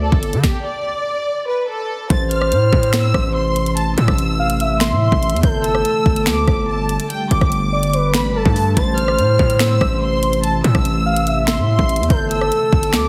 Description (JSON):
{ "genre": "hip hop, drill", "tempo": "144 BPM", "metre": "4/4", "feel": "half-time", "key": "A minor", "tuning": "A4 = 439 Hz", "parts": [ { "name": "warm studio violin section", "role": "melody", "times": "0.0-13.1 s", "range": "G4 to A6", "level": "-26 LUFS", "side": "equal", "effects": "tape echo" }, { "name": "distorted 808-style bass", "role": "bass", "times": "0.0-13.1 s", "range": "G1 to D3", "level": "-21 LUFS", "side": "equal", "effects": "distortion" }, { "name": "drill drum kit", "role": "drums", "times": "0.1-13.0 s", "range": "finger snaps, hi-hat, kick drum, rim click, snare drum", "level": "-21 LUFS", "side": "equal", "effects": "none" }, { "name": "gliding portamento lead", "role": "second line", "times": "2.1-13.1 s", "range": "A4 to F5", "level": "-22 LUFS", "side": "equal", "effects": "chorus, tape echo" }, { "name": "ethereal airy pad", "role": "sustained chords", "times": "3.4-13.1 s", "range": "C3 to A3", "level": "-27 LUFS", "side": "equal", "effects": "ensemble chorus, built-in reverb" } ], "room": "moderate recital hall reverb, RT60 1.6 s", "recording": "heavily compressed radio sound, multiband compression", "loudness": "-17 LUFS", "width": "mono", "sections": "0.0-2.1 A section; 2.1-13.1 B section", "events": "stop 0.4-2.1", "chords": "0.0 Gsus2; 2.1 Am; 5.4 Gsus2; 8.8 Am; 12.1 Gsus2" }